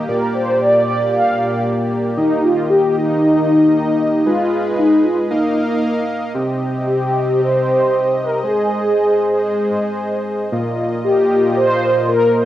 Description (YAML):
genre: synthwave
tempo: 115 BPM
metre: 4/4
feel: straight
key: Eb major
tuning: A4 = 440 Hz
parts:
  - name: soft supersaw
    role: sustained chords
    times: 0.0-12.5 s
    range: Bb2 to F5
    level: -19 LUFS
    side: equal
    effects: cassette tape, plate reverb
  - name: mellow synth brass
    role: melody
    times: 0.1-12.5 s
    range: Eb4 to F5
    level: -15 LUFS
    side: equal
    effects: chorus, cassette tape, plate reverb, analog delay
room: wet studio reverb, RT60 0.5 s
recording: home recording on cassette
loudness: -14 LUFS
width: side -13 dB against mid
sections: 0.0-6.3 A section; 6.3-12.5 B section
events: none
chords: 0.1 Bb6; 2.2 Eb; 4.3 Abm; 5.3 Bbsus4; 6.3 Cm; 8.4 Ab; 10.5 Ebsus2/Bb